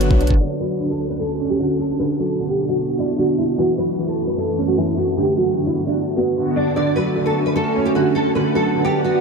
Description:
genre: hip hop.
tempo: 151 BPM.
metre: 4/4.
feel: half-time.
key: D major.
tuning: A4 = 440 Hz.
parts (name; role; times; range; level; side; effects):
nylon-string guitar; melody; 0.0-9.2 s; D4 to D5; -21 LUFS; right 1 dB; ensemble chorus, tape echo.
dark baby grand piano; accompaniment; 0.0-9.2 s; D3 to D4; -22 LUFS; right 2 dB; ensemble chorus.
warbly tape-like pad; sustained chords; 0.0-9.2 s; D2 to F#5; -23 LUFS; left 1 dB; chorus, built-in reverb.
room: wet huge ambient reverb, RT60 5.0 s.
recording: dreamy mix soaked in reverb, low-pass filter.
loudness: -17 LUFS.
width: side -4 dB against mid.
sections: 0.4-6.8 A section; 6.8-9.2 B section.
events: filter sweep 0.4-6.8.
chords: 0.4 Dmaj7; 2.0 Bm; 3.6 F#m7; 5.2 Gmaj7; 6.8 Dmaj7; 8.4 Bm.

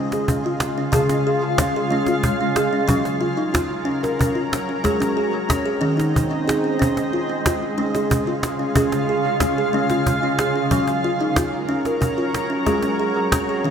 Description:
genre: world meditative, meditative tuned percussion.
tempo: 61 BPM (dotted quarters).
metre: 6/8.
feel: straight.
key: Db major.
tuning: A4 = 440 Hz.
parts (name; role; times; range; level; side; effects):
shimmering ambient pad; sustained chords; 0.0-13.7 s; Db3 to Bb4; -23 LUFS; equal; chorus, built-in reverb.
kalimba; arpeggios; 0.0-13.7 s; Db3 to Bb4; -21 LUFS; equal; diffuse ambient delay.
cajon; percussion; 0.1-13.7 s; none; -23 LUFS; equal; none.
room: wet scoring stage reverb, RT60 1.7 s.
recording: none.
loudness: -18 LUFS.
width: side -7 dB against mid.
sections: 0.0-13.7 A section.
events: none.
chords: 0.0 Db; 2.9 Gb; 4.8 Ab; 6.8 Db; 10.7 Gb; 12.7 Ab.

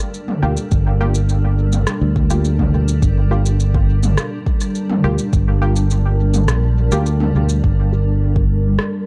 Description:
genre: ambient dub.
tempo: 104 BPM.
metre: 4/4.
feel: straight.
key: G minor.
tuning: A4 = 441 Hz.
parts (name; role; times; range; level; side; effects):
granular cloud pad; sustained chords; 0.0-9.1 s; G3 to Bb4; -26 LUFS; equal; built-in reverb.
organic electronic drum kit; drums; 0.1-8.9 s; rim click, shaker, toms; -26 LUFS; equal; dub echo.
filtered dub chord stab; stabs; 0.4-8.1 s; Bb3 to G4; -30 LUFS; equal; chorus, dub echo.
fingered electric bass; bass; 0.4-8.8 s; G1 to D2; -18 LUFS; equal; none.
electronic kick drum; drums; 0.7-8.5 s; none; -21 LUFS; equal; overdrive.
room: light reverb, digital ambience.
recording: dark, warm production.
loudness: -17 LUFS.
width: mono.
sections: 0.0-7.6 A section; 7.6-9.1 B section.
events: kick drops out 6.5-7.6; filter sweep on synth stab 7.6-9.1.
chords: 0.0 Gm7.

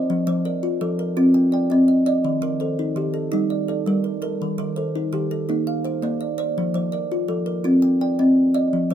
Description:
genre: southern african traditional.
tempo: 111 BPM (dotted quarters).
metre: 12/8.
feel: straight.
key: F mixolydian.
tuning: A4 = 443 Hz.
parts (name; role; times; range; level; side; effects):
kalimba; arpeggios; 0.0-8.9 s; Eb3 to G5; -20 LUFS; left 2 dB; none.
kalimba; arpeggios; 0.0-8.9 s; Eb3 to G5; -25 LUFS; right 6 dB; none.
room: light reverb.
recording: minimal, uncompressed stereo recording.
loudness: -19 LUFS.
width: side -9 dB against mid.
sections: 0.1-8.9 A section.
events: none.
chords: 0.1 F; 1.2 Cm; 2.2 Eb; 3.3 Gm; 4.4 Eb; 5.5 Bb; 6.6 F; 7.6 Cm.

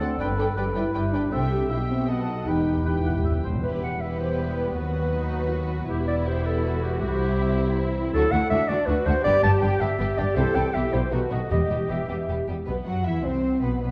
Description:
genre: quick classical-period movement for symphony orchestra.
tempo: 160 BPM.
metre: 3/4.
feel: straight.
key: E minor.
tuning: A4 = 440 Hz.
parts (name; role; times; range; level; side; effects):
muted studio violin section; melody; 0.0-13.9 s; E4 to G5; -40 LUFS; equal; none.
hollow large flute ensemble; second line; 0.0-12.5 s; G4 to A5; -37 LUFS; equal; none.
mellow clarinet; second line; 0.0-12.5 s; F#4 to A5; -31 LUFS; equal; none.
mellow oboe; second line; 0.0-3.6 s; A4 to F#5; -37 LUFS; equal; none.
muted studio violin section; second line; 0.0-13.9 s; G3 to E5; -38 LUFS; equal; none.
muted studio viola section; accompaniment; 0.0-13.9 s; B3 to B4; -35 LUFS; equal; none.
mellow French horn section; sustained chords; 0.0-13.9 s; D#3 to C5; -32 LUFS; equal; none.
muted studio cello section; bass; 0.0-13.9 s; C2 to F#3; -31 LUFS; equal; none.
muted studio double bass section; bass; 0.0-13.9 s; E1 to F#2; -32 LUFS; equal; none.
timpani; percussion; 2.5-3.6, 11.5-12.1 s; E2; -32 LUFS; equal; none.
room: wet scoring stage reverb, RT60 1.7 s.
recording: dark, warm production.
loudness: -24 LUFS.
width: mono.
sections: 0.0-3.6 A section; 3.6-12.7 B section; 12.7-13.9 B section.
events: timpani fill 2.5-3.6.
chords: 0.2 G; 1.3 C; 1.7 Em/B; 2.1 B7; 2.5 Em; 4.8 B/D#; 5.9 Em; 7.0 C; 8.1 D; 9.2 G; 10.4 C; 10.7 Em/B; 11.1 B7; 11.5 Em; 12.7 E5.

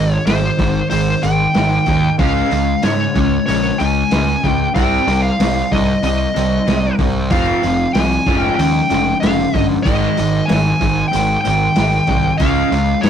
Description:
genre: classic rock.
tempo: 94 BPM.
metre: 4/4.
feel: straight.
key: unclear.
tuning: A4 = 440 Hz.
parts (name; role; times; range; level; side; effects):
smooth overdriven lead guitar; melody; 0.0-13.1 s; C5 to Ab5; -19 LUFS; equal; none.
overdriven semi-hollow guitar; riff; 0.0-13.1 s; F2 to Db4; -20 LUFS; right 3 dB; none.
raw garage guitar; riff; 0.0-13.1 s; Ab2 to F4; -21 LUFS; left 5 dB; overdrive.
fuzz picked electric bass; bass; 0.0-13.1 s; F1 to Ab2; -19 LUFS; equal; overdrive.
vintage drum kit; drums; 0.3-13.1 s; hi-hat, kick drum, snare drum; -20 LUFS; right 1 dB; none.
room: light reverb.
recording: rough rehearsal-room recording, warm saturation.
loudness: -13 LUFS.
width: side -8 dB against mid.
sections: 0.0-13.1 A section.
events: none.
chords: 0.0 Ab; 2.2 Db; 4.8 Cm; 7.3 F5; 8.3 Db/F; 9.9 Ab5; 12.4 Db.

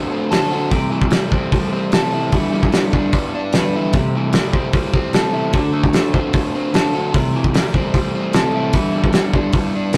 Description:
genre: indie rock.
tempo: 150 BPM.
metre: 4/4.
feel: straight.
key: E minor.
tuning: A4 = 438 Hz.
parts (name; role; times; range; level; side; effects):
clean electric guitar; riff; 0.0-10.0 s; C3 to C5; -24 LUFS; equal; none.
overdriven electric guitar; riff; 0.0-10.0 s; C3 to B4; -23 LUFS; equal; none.
cloth-damped thuddy drum kit; drums; 0.3-10.0 s; hi-hat, kick drum, snare drum; -20 LUFS; equal; none.
room: moderate studio ambience, RT60 0.5 s.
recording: rough rehearsal-room recording, tube saturation.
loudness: -17 LUFS.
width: mono.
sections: 0.0-10.0 A section.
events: none.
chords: 0.0 D7; 0.7 Am7/C; 2.3 Em7; 3.9 C6; 5.5 D7; 7.1 Am7/C; 8.7 Em7.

